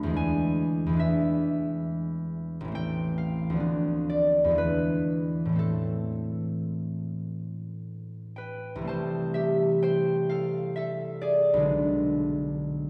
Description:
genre	classical, solo harp piece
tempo	51-72 BPM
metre	3/4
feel	rubato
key	A minor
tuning	A4 = 442 Hz
part	concert harp	solo	0.0-12.9 s	A1 to B5	-28 LUFS	equal	none
room	wet concert hall reverb, RT60 2.5 s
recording	none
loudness	-27 LUFS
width	mono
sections	0.0-8.9 A section; 8.9-12.9 B section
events	none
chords	0.2 E7; 2.7 Am; 3.6 Bdim/D; 4.6 E7; 5.6 Am; 8.9 Am/C; 11.7 G#dim/B

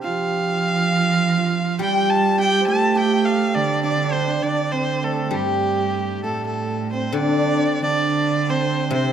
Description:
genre	chinese traditional, Chinese chamber ensemble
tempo	68 BPM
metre	2/4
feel	rubato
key	G shang mode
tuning	A4 = 440 Hz
part	clear erhu	melody	0.0-9.1 s	G4 to A5	-23 LUFS	equal	none
part	hammered dulcimer	second line	0.0-9.1 s	G3 to C5	-24 LUFS	right 2 dB	none
part	warm cello	second line	0.0-9.1 s	G2 to A3	-23 LUFS	right 7 dB	none
part	guzheng	accompaniment	0.0-9.1 s	C3 to G3	-26 LUFS	left 7 dB	none
room	moderate recital hall reverb, RT60 1.4 s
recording	none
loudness	-18 LUFS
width	side -8 dB against mid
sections	0.0-7.2 A section; 7.2-9.1 B section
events	none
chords	none

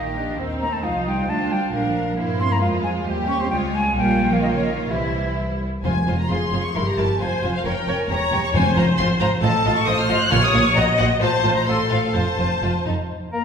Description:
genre	quick classical-period movement for symphony orchestra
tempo	133 BPM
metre	2/4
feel	rubato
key	F minor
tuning	A4 = 442 Hz
part	rich studio violin section	melody	0.0-12.9 s	Bb4 to Gb6	-26 LUFS	left 2 dB	none
part	bright concert flute	second line	0.0-5.4, 13.3-13.4 s	Db5 to Db6	-25 LUFS	left 2 dB	none
part	rich studio violin section	second line	0.0-12.9 s	Eb4 to Eb5	-27 LUFS	left 1 dB	none
part	rich studio cello section	bass	0.0-12.9 s	E2 to Db4	-26 LUFS	right 2 dB	none
part	rich studio double bass section	bass	0.0-12.9 s	E1 to G2	-26 LUFS	right 2 dB	none
part	rich studio viola section	accompaniment	0.2-12.9 s	G3 to Eb5	-24 LUFS	equal	none
part	timpani	percussion	5.8-6.5, 8.5-10.7 s	F2 to Bb2	-25 LUFS	left 1 dB	none
part	bright oboe	second line	13.3-13.4 s	Bb4	-32 LUFS	left 2 dB	none
part	warm bassoon	accompaniment	13.3-13.4 s	Bb3	-30 LUFS	left 1 dB	none
part	mellow French horn section	sustained chords	13.3-13.4 s	Bb3	-27 LUFS	left 7 dB	none
room	wet recital hall reverb, RT60 1.8 s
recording	recorded in a church or concert hall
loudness	-18 LUFS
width	side -7 dB against mid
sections	0.0-5.8 A section; 5.8-13.1 B section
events	none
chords	0.4 F7/Eb; 1.3 Bb/D; 2.2 C7/G; 2.6 Fm; 3.1 Cm/Eb; 3.5 Db; 4.0 Gm7b5/Bb; 4.9 C; 5.8 Fm; 6.8 Edim/G (rootless); 7.2 Fm; 7.6 Gm7/F; 8.1 Edim7; 8.5 Fm; 9.0 Fm/Ab; 9.4 F7/A; 10.3 Bbm; 10.8 Cm7b5/Bb (rootless); 11.2 F/A; 12.1 F

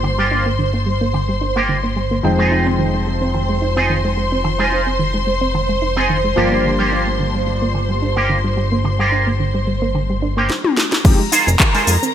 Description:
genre	nu-disco, nu disco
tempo	109 BPM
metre	4/4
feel	swing 54% on 16ths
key	F dorian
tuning	A4 = 441 Hz
part	warm electric grand piano	accompaniment	0.0-11.2 s	F3 to G5	-24 LUFS	left 2 dB	ensemble chorus, sidechain pumping, ping-pong delay
part	warm symphonic string section	sustained chords	0.0-12.1 s	Bb4 to C6	-22 LUFS	equal	sidechain pumping
part	soft round pluck	arpeggios	0.0-12.1 s	D3 to Eb4	-23 LUFS	right 2 dB	chorus, sidechain pumping, digital delay
part	electric guitar with an envelope filter	riff	0.0-11.9 s	Bb3 to C5	-20 LUFS	right 2 dB	analog chorus, ping-pong delay
part	fat analog bass	bass	0.0-12.0 s	F1 to F2	-20 LUFS	equal	sidechain pumping
part	house drum kit	drums	10.5-12.1 s	cabasa, crash cymbal, handclaps, hi-hat, snare drum, toms	-16 LUFS	left 2 dB	overdrive, gated reverb
part	electronic kick drum	drums	11.0-11.7 s	none	-13 LUFS	equal	overdrive
room	light reverb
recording	bright 1980s-style digital production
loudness	-15 LUFS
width	side -10 dB against mid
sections	0.0-11.0 A section; 11.0-12.1 B section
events	drum fill 10.5-11.0; drop 11.0-12.1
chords	0.0 Gm7; 2.2 Fm7; 6.4 Gm7; 11.0 Fm7

